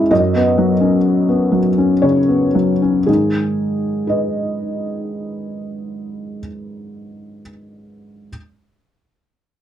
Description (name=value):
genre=neoclassical minimalist piano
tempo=56-66 BPM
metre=3/4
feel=rubato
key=G# minor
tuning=A4 = 439 Hz
part: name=felt-muted upright piano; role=solo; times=0.0-8.3 s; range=F#2 to E5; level=-15 LUFS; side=left 1 dB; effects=slapback echo
room=light reverb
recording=dry, close 1970s-style studio recording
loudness=-14 LUFS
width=side -10 dB against mid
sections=0.0-3.1 A section; 3.1-6.1 B section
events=slowing down 0.0-3.1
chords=0.1 F#sus4; 3.1 G#m